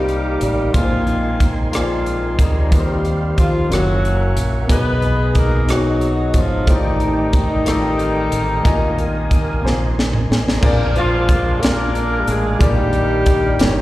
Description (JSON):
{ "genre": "slow gospel", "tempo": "61 BPM (dotted quarters)", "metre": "6/8", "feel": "straight", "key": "unclear", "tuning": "A4 = 440 Hz", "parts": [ { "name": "breathy tenor saxophone", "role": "melody", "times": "0.0-13.8 s", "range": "Eb3 to B3", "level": "-24 LUFS", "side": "right 2 dB", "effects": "slapback echo" }, { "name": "warm horn section", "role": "melody", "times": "0.0-13.8 s", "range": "G3 to B4", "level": "-22 LUFS", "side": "left 2 dB", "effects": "slapback echo" }, { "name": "warm concert grand piano", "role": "accompaniment", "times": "0.0-13.8 s", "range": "G2 to Ab5", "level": "-23 LUFS", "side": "left 2 dB", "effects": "none" }, { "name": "tonewheel organ", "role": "sustained chords", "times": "0.0-13.8 s", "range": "Eb4 to Eb6", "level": "-28 LUFS", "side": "right 1 dB", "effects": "slow rotary speaker, chorus vibrato" }, { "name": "fingered electric bass", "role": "bass", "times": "0.0-13.8 s", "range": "Gb1 to Eb2", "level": "-20 LUFS", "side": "equal", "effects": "none" }, { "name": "crisp fusion drum kit", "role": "drums", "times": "0.1-13.8 s", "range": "crash cymbal, hi-hat, kick drum, rim click, snare drum, toms", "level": "-17 LUFS", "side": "equal", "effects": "none" } ], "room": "moderate club reverb, RT60 0.6 s", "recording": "live gig heard through the venue's PA, recital hall reverb", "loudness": "-14 LUFS", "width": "side -16 dB against mid", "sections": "0.0-10.6 A section; 10.6-13.8 B section", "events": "drum fill 9.6-10.6", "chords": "0.0 Cm11; 0.7 Bb9sus4; 2.7 Eb69; 3.7 Gb7; 4.7 B6; 6.7 F13/A; 8.6 Bb7sus4; 9.6 Bb9sus4; 10.6 Bb7; 12.6 Ebmaj9/Bb", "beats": "| 0.74 1.73 | 2.72 3.71 | 4.69 5.68 | 6.67 7.66 | 8.65 9.64 | 10.63 11.62 | 12.60 13.59" }